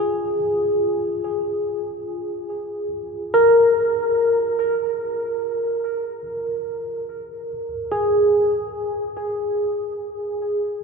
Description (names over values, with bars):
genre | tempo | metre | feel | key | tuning
ambient | free time | none | none | F minor | A4 = 438 Hz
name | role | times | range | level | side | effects
overdriven tine electric piano | solo | 0.0-10.8 s | F4 to Bb4 | -20 LUFS | equal | analog chorus, tape echo
room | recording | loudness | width
wet huge ambient reverb, RT60 7.1 s | none | -19 LUFS | side -4 dB against mid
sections
0.0-7.5 A section; 7.5-10.8 B section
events
none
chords
0.0 Fm; 7.5 N.C.